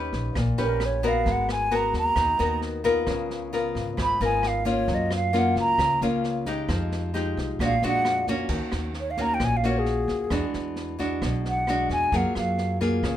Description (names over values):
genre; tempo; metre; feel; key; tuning
bossa nova; 133 BPM; 4/4; straight; Eb minor; A4 = 439 Hz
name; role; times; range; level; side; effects
nylon-string guitar; accompaniment; 0.0-13.2 s; Ab2 to Cb5; -26 LUFS; left 2 dB; none
upright bass; bass; 0.0-13.2 s; Ab1 to Gb2; -30 LUFS; equal; none
open jazz drum kit; drums; 0.1-13.1 s; crash cymbal, kick drum, rim click, snare drum; -34 LUFS; right 1 dB; none
mellow hollow silver concert flute; melody; 0.6-12.8 s; Ab4 to Cb6; -24 LUFS; right 1 dB; none
room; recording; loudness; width
moderate studio ambience, RT60 0.5 s; minimal, uncompressed stereo recording; -22 LUFS; side -11 dB against mid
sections
0.0-8.5 A section; 8.5-13.2 A section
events
flute solo 0.0-8.5, 8.5-13.2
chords
0.0 Eb7b13; 1.3 Abm9; 3.1 Db6; 4.9 Gbmaj7; 6.7 Fm9; 7.6 Bb7b13; 8.5 Ebm7; 10.3 E9; 12.1 Gbmaj9